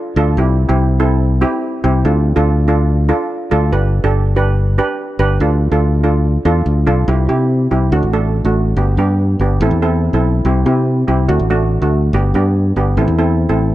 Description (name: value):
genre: calypso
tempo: 143 BPM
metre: 4/4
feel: straight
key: C major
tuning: A4 = 435 Hz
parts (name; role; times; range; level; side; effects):
- steel pan; accompaniment; 0.2-13.7 s; A3 to B4; -17 LUFS; right 2 dB; none
- fingered electric bass; bass; 0.2-13.7 s; G1 to C3; -14 LUFS; equal; none
room: small room reverb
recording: none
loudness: -12 LUFS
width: side -15 dB against mid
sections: 0.0-7.1 A section; 7.1-13.7 B section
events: none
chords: 0.4 C; 2.1 Dm; 3.7 G; 5.4 Dm; 7.1 C; 7.9 D; 8.8 G; 9.6 Am; 10.4 C; 11.3 D; 12.1 G; 13.0 Am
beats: | 0.38 0.79 1.21 1.63 | 2.05 2.47 2.89 3.31 | 3.73 4.15 4.57 4.99 | 5.41 5.83 6.25 6.67 | 7.08 7.50 7.92 8.35 | 8.77 9.19 9.61 10.03 | 10.45 10.87 11.29 11.71 | 12.13 12.55 12.97 13.39